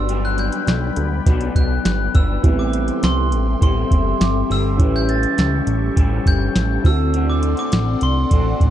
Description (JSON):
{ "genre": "indie pop, bedroom pop", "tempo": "102 BPM", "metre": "4/4", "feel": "straight", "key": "A dorian", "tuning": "A4 = 442 Hz", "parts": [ { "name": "glockenspiel with hard plastic mallets", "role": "melody", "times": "0.0-8.7 s", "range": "C6 to A6", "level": "-26 LUFS", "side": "right 1 dB", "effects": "lush chorus, tape echo" }, { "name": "electric guitar through a small old amp", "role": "accompaniment", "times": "0.0-8.7 s", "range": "G2 to F#4", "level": "-24 LUFS", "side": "left 5 dB", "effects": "ensemble chorus, vibrato effect" }, { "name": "phased analog pad", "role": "sustained chords", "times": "0.0-8.7 s", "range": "F#3 to C#6", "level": "-31 LUFS", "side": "left 1 dB", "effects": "phaser, chorus" }, { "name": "fat analog bass", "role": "bass", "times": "0.0-8.7 s", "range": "F#1 to D2", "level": "-20 LUFS", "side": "equal", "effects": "none" }, { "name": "soft vintage rhythm box", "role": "drums", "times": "0.1-8.7 s", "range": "hi-hat, kick drum, snare drum", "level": "-17 LUFS", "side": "equal", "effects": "none" }, { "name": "warm upright piano", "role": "accompaniment", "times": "2.4-8.7 s", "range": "B3 to B4", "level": "-26 LUFS", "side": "right 7 dB", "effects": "none" } ], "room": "little or no reverb", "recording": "dark, warm production", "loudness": "-15 LUFS", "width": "side -11 dB against mid", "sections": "0.0-8.7 A section", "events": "none", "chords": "0.0 Gmaj7; 2.4 Am7; 4.8 A7; 6.8 D7" }